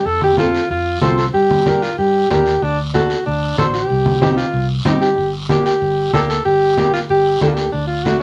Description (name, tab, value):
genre	latin, cumbia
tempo	188 BPM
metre	4/4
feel	straight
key	G minor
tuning	A4 = 440 Hz
part	clear alto saxophone	melody	0.0-8.2 s	D4 to A4	-18 LUFS	equal	none
part	vintage muted fingered electric bass	bass	0.1-8.2 s	G1 to G2	-25 LUFS	equal	none
part	guiro	percussion	0.1-8.2 s	none	-33 LUFS	equal	none
part	congas	percussion	0.2-8.2 s	none	-24 LUFS	equal	none
part	flamenco guitar	accompaniment	0.4-8.2 s	A3 to C5	-23 LUFS	equal	none
room	moderate studio ambience, RT60 0.5 s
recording	none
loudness	-16 LUFS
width	mono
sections	0.0-6.5 A section; 6.5-8.2 A section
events	none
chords	0.1 F; 1.3 Gm; 2.6 D7; 3.9 Cm; 5.2 Gm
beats	| 0.06 0.38 0.70 1.02 | 1.34 1.66 1.98 2.30 | 2.62 2.94 3.26 3.58 | 3.90 4.22 4.54 4.86 | 5.18 5.50 5.82 6.14 | 6.46 6.78 7.09 7.42 | 7.74 8.05